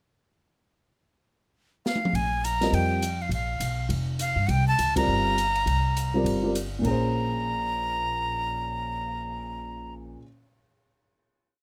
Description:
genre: modal jazz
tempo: 205 BPM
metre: 4/4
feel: swing 60% on 8ths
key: Bb dorian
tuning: A4 = 440 Hz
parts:
  - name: breathy bright jazz flute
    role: melody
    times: 1.9-9.9 s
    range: F5 to Bb5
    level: -30 LUFS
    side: equal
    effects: none
  - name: open jazz drum kit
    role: drums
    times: 1.9-9.1 s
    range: crash cymbal, cymbal swell, hi-hat, kick drum, ride cymbal, snare drum, toms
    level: -36 LUFS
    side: equal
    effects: none
  - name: upright bass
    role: bass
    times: 2.1-10.2 s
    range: F1 to G2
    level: -31 LUFS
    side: equal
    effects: none
  - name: dark baby grand piano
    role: accompaniment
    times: 2.6-10.3 s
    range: Bb2 to Eb5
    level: -31 LUFS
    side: equal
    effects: none
room: light reverb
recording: close, detailed microphones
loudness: -26 LUFS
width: mono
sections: 1.0-2.1 pickup bar; 2.1-6.8 A section; 6.8-9.2 final chord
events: drum fill 1.9; band accent 4.9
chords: 1.0 N.C.; 2.1 Bbsus2; 4.5 Csus2; 6.8 Bbm9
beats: | 0.97 1.27 1.56 1.85 | 2.15 2.44 2.73 3.02 | 3.32 3.61 3.90 4.20 | 4.49 4.79 5.08 5.37 | 5.67 5.96 6.25 6.54 | 6.84 7.13 7.42 7.71 | 8.01 8.30 8.59 8.88

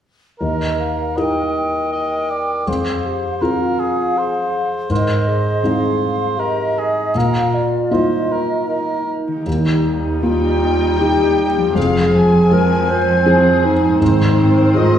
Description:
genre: cinematic, emotional film score for orchestra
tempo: 80 BPM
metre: 3/4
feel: rubato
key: Eb major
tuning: A4 = 445 Hz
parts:
  - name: mellow clarinet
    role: second line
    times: 0.4-15.0 s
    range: Eb4 to C5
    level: -20 LUFS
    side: right 1 dB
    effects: none
  - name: mellow hollow small flute group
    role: second line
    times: 0.4-9.1 s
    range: D5 to G5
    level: -22 LUFS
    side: right 1 dB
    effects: none
  - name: warm cor anglais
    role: second line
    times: 0.4-9.1 s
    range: Ab4 to Eb5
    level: -23 LUFS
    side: right 2 dB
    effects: none
  - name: felt-muted upright piano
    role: accompaniment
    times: 0.4-15.0 s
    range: Eb2 to Bb4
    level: -20 LUFS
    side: left 1 dB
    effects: none
  - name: concert harp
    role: arpeggios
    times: 9.3-15.0 s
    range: Ab2 to C5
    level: -22 LUFS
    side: left 1 dB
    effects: none
  - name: muted studio viola section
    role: accompaniment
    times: 9.5-15.0 s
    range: Eb3 to Eb4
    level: -22 LUFS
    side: left 2 dB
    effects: none
  - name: muted studio cello section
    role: bass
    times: 9.5-15.0 s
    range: Eb2 to Ab2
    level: -20 LUFS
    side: right 1 dB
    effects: none
  - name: muted studio double bass section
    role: bass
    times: 9.5-14.7 s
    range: F1 to Eb2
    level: -23 LUFS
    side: equal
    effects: none
  - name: muted studio violin section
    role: second line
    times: 10.2-15.0 s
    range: Ab4 to Ab5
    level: -22 LUFS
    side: left 3 dB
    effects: none
room: wet recital hall reverb, RT60 1.3 s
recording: recorded in a church or concert hall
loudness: -14 LUFS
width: side -9 dB against mid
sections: 0.4-9.5 A section; 9.5-15.0 B section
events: none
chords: 0.4 Eb; 2.7 Fm; 4.9 Ab; 7.1 Bbsus4; 9.5 Eb; 11.8 Fm; 14.0 Ab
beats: | 0.41 1.17 1.92 | 2.67 3.42 4.17 | 4.90 5.63 6.38 | 7.15 7.91 8.68 | 9.46 10.24 11.00 | 11.76 12.52 13.27 | 14.01 14.75

